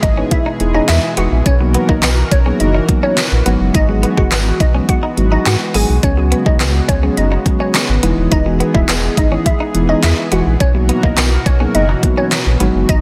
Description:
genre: dance-pop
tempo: 105 BPM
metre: 4/4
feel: straight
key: unclear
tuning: A4 = 441 Hz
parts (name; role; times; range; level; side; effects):
- glassy wavetable pluck; melody; 0.0-13.0 s; C#4 to G#5; -23 LUFS; equal; chorus, sidechain pumping, tape echo
- chorused pulse-width pad; sustained chords; 0.0-13.0 s; B2 to A#4; -24 LUFS; equal; sidechain pumping
- direct-recorded clean electric guitar; riff; 0.0-12.7 s; G#3 to D#4; -27 LUFS; equal; lush chorus
- sub bass with octave; bass; 0.0-13.0 s; D#1 to G#2; -18 LUFS; equal; sidechain pumping
- pop drum kit; drums; 0.0-13.0 s; handclaps, hi-hat, kick drum, snare drum; -18 LUFS; equal; overdrive
- mellow tine electric piano; accompaniment; 0.2-12.9 s; E3 to B4; -22 LUFS; equal; sidechain pumping
- tambourine; percussion; 0.9-12.5 s; none; -30 LUFS; equal; none
room: light reverb, digital ambience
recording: none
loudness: -14 LUFS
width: mono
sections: 0.0-13.0 A section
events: none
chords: 0.0 Emaj7; 1.5 Bmaj7; 3.5 G#m7; 6.0 C#7sus4; 8.0 Emaj7; 10.6 Bmaj7

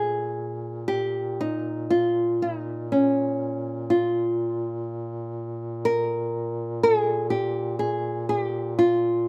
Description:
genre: caucasian folk, Caucasian lament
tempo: 61 BPM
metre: 3/4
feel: rubato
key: Bb dorian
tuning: A4 = 439 Hz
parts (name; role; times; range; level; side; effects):
- nylon-string guitar; melody; 0.0-9.3 s; Db4 to Bb4; -26 LUFS; equal; slapback echo
- mellow duduk; drone; 0.0-9.3 s; Bb2; -34 LUFS; equal; none
room: light reverb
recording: recorded outdoors, with no room sound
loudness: -25 LUFS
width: mono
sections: 0.0-9.3 A section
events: none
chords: none

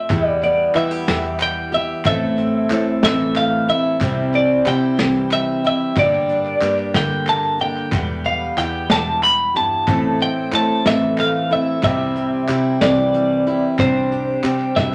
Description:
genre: indie folk with a building arrangement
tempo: 61 BPM (dotted quarters)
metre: 6/8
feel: straight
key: C major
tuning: A4 = 440 Hz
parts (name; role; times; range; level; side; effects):
- twelve-string electric guitar; melody; 0.0-14.9 s; C5 to B5; -22 LUFS; equal; harmonic tremolo
- fingerpicked steel-string acoustic guitar; accompaniment; 0.0-14.9 s; E2 to G4; -29 LUFS; equal; none
- picked steel-string acoustic guitar; accompaniment; 0.1-14.9 s; G2 to A4; -24 LUFS; equal; none
- picked electric bass; bass; 0.1-14.9 s; E1 to E3; -28 LUFS; equal; none
- vintage brush drum kit; drums; 0.1-14.9 s; hi-hat, kick drum, snare drum; -23 LUFS; equal; none
- group handclap; percussion; 0.1-14.7 s; none; -34 LUFS; equal; none
room: wet studio reverb, RT60 0.6 s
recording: none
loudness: -18 LUFS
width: mono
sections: 0.1-14.9 A section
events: drum fill 14.8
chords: 0.1 Em; 2.1 Am; 4.0 C; 6.0 Gm; 7.9 Em; 9.9 Am; 11.8 C; 13.8 Csus2

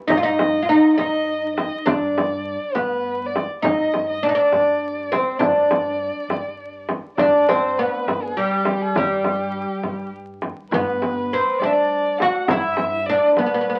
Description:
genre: Persian modal ensemble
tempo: 68 BPM (dotted quarters)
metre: 6/8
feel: straight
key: G dastgah homayun, G dastgah mahur from 10.7 s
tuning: A4 = 439 Hz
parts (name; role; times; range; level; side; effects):
- oud; melody; 0.1-13.8 s; G3 to F#4; -21 LUFS; equal; none
- dark violin; second line; 0.1-13.8 s; G4 to F#5; -30 LUFS; equal; none
- upright bass; bass; 0.1-13.8 s; G2 to G3; -40 LUFS; equal; none
- frame drum; percussion; 0.1-13.5 s; none; -26 LUFS; equal; none
room: moderate studio ambience, RT60 0.5 s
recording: very old 78 rpm record, vinyl crackle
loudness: -20 LUFS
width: mono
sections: 0.0-10.7 A section; 10.7-13.8 B section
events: none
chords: none

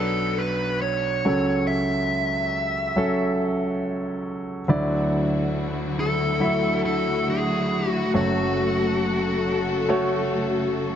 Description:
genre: pop ballad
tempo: 70 BPM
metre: 4/4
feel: straight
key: F# minor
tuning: A4 = 440 Hz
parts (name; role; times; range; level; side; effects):
- dark smooth lead guitar; melody; 0.0-10.7 s; F#4 to E5; -25 LUFS; left 1 dB; overdrive
- warm concert grand piano; accompaniment; 0.0-11.0 s; F#1 to E5; -24 LUFS; right 1 dB; none
- downlifter; sound effects; 0.0-4.7 s; none; -40 LUFS; left 1 dB; none
- clear studio string section; sustained chords; 4.7-11.0 s; C#3 to A4; -27 LUFS; left 1 dB; none
room: moderate plate reverb, RT60 3.1 s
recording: dark, warm production, nothing above 7.8 kHz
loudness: -21 LUFS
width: side -9 dB against mid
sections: 0.0-11.0 A section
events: none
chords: 0.0 Bm; 1.3 F#m/C#; 4.7 Dadd9; 8.1 F#m

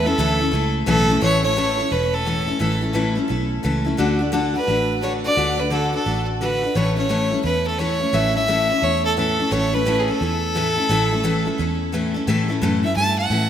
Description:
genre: honky-tonk and classic country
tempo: 174 BPM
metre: 4/4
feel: swing 63% on 8ths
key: unclear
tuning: A4 = 440 Hz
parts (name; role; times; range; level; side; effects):
- clear fiddle; melody; 0.0-13.5 s; G#4 to A5; -21 LUFS; right 1 dB; tape echo
- picked steel-string acoustic guitar; accompaniment; 0.0-13.5 s; A2 to A4; -21 LUFS; left 2 dB; none
- vintage muted fingered electric bass; bass; 0.0-13.5 s; E1 to A2; -25 LUFS; right 1 dB; none
room: wet lush hall reverb, RT60 2.2 s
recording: rough home demo mix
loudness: -18 LUFS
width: side -9 dB against mid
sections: 0.0-1.2 A section; 1.2-12.3 B section; 12.3-13.5 A section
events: fiddle solo 0.0-1.2, 12.3-13.5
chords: 0.0 A; 4.0 D; 6.8 A

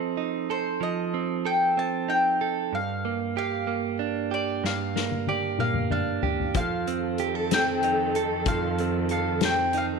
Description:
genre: six-eight pop ballad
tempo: 63 BPM (dotted quarters)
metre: 6/8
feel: straight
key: unclear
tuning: A4 = 440 Hz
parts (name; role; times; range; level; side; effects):
- mandolin; melody; 0.0-9.9 s; C5 to A5; -28 LUFS; left 3 dB; none
- direct-recorded clean electric guitar; accompaniment; 0.0-10.0 s; G2 to A4; -27 LUFS; right 9 dB; none
- soft-mallet drum kit; drums; 4.6-9.9 s; hi-hat, kick drum, snare drum, toms; -29 LUFS; left 6 dB; none
- warm studio string section; sustained chords; 6.5-10.0 s; F2 to A4; -29 LUFS; left 2 dB; none
room: moderate echo chamber reverb, RT60 1.8 s, small room reverb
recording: 1960s-style stereo with parts hard left and right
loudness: -24 LUFS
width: side -5 dB against mid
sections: 0.0-10.0 A section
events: drum fill 4.6-6.5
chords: 0.0 F7; 2.7 Gm7; 6.5 F7

